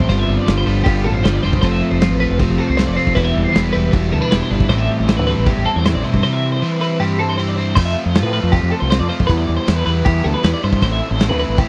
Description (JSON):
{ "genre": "math rock and midwest emo", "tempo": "157 BPM", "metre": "4/4", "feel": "straight", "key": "unclear", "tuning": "A4 = 440 Hz", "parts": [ { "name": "twelve-string electric guitar", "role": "accompaniment", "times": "0.0-7.7 s", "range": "E2 to G4", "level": "-22 LUFS", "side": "equal", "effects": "spring reverb" }, { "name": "twelve-string electric guitar", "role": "arpeggios", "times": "0.0-11.7 s", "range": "G4 to E5", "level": "-24 LUFS", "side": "equal", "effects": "tremolo" }, { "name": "overdriven electric guitar", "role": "riff", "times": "0.0-11.7 s", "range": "G2 to F4", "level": "-25 LUFS", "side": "equal", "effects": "none" }, { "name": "growling fingered electric bass", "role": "bass", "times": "0.0-11.7 s", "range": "E1 to A2", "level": "-21 LUFS", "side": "equal", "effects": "overdrive" }, { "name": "loose indie drum kit", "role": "drums", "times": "0.0-11.7 s", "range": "crash cymbal, kick drum, snare drum", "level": "-19 LUFS", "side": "equal", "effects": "none" } ], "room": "little or no reverb", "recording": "dry, close 1970s-style studio recording", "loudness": "-17 LUFS", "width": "mono", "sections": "0.0-7.8 A section; 7.8-11.7 B section", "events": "none", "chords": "0.1 Fmaj7; 3.2 Em7; 4.7 Am7; 6.2 Cmaj7; 7.8 Fmaj7; 9.3 Em7; 10.8 Am" }